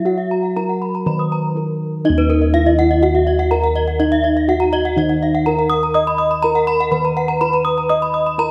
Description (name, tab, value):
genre	Balinese gamelan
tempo	123 BPM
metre	4/4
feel	straight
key	Eb pelog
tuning	A4 = 440 Hz
part	gamelan-type bronze metallophone	melody	0.0-8.5 s	Eb4 to Eb5	-20 LUFS	equal	none
part	gamelan-type bronze metallophone	arpeggios	0.0-8.1 s	Cb5 to Eb6	-27 LUFS	equal	none
part	gamelan-type bossed gongs	bass	0.0-8.5 s	Eb2 to Eb5	-22 LUFS	equal	none
part	gamelan-type bronze metallophone	arpeggios	0.1-8.5 s	Bb4 to Eb6	-23 LUFS	equal	none
room	moderate recital hall reverb, RT60 1.6 s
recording	none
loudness	-17 LUFS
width	mono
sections	0.0-2.1 A section; 2.1-8.5 B section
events	none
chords	none